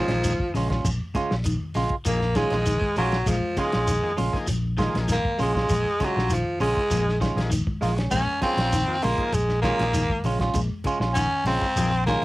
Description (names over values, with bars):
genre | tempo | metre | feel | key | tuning
afrobeat | 99 BPM | 4/4 | straight | Bb minor | A4 = 441 Hz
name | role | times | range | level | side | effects
raspy baritone saxophone | melody | 0.0-12.2 s | F3 to Db4 | -24 LUFS | equal | cassette tape
combo organ | accompaniment | 0.0-12.2 s | F3 to Ab4 | -33 LUFS | left 2 dB | cassette tape
semi-hollow electric guitar | arpeggios | 0.0-12.2 s | Db3 to Ab3 | -33 LUFS | left 3 dB | cassette tape
semi-hollow electric guitar | stabs | 0.0-12.2 s | Ab3 to F4 | -27 LUFS | right 3 dB | cassette tape
fingered electric bass | bass | 0.1-12.2 s | Bb1 | -26 LUFS | equal | none
warm soul drum kit | drums | 0.1-12.2 s | hi-hat, kick drum, snare drum | -31 LUFS | equal | cassette tape
congas | percussion | 0.1-12.2 s | none | -35 LUFS | equal | none
shekere | percussion | 0.2-12.2 s | none | -32 LUFS | equal | none
room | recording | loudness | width
light reverb | home recording on cassette | -21 LUFS | side -18 dB against mid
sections
0.0-12.2 A section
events
baritone saxophone solo 0.0-12.2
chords
0.0 Bbm7